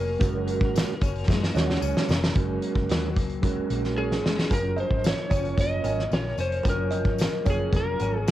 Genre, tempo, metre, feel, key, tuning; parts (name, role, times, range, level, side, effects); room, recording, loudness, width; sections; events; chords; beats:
indie pop, bedroom pop; 112 BPM; 4/4; straight; Gb major; A4 = 445 Hz
electric slide guitar; melody; 0.0-8.3 s; Ab4 to Eb5; -30 LUFS; left 1 dB; lush chorus, cassette tape, analog delay
electric guitar through a small old amp; accompaniment; 0.0-8.3 s; Gb2 to Db4; -33 LUFS; left 8 dB; analog chorus, warbly pitch drift, cassette tape
vintage muted picked electric bass; bass; 0.0-8.3 s; F1 to Gb2; -30 LUFS; equal
mellow tonewheel organ; accompaniment; 0.2-8.2 s; Gb3 to Bb5; -31 LUFS; right 7 dB; fast rotary speaker, cassette tape
loose indie drum kit; drums; 0.2-8.3 s; hi-hat, kick drum, snare drum; -25 LUFS; equal; cassette tape
tambourine; percussion; 0.2-8.3 s; -47 LUFS; left 11 dB
kalimba; second line; 4.5-8.1 s; Bb4 to Eb5; -36 LUFS; right 6 dB; lush chorus, cassette tape, analog delay
light reverb, small room ambience; home recording on cassette; -22 LUFS; side -13 dB against mid
0.0-2.4 A section; 2.4-4.5 B section; 4.5-8.3 C section
drum fill 1.3-2.4, 4.0-4.5; tonewheel organ fill 1.3-2.4
0.0 Ab9sus4; 4.5 Gbmaj7
| 0.21 0.74 1.28 1.82 | 2.35 2.89 3.43 3.96 | 4.50 5.04 5.58 6.11 | 6.65 7.19 7.73 8.26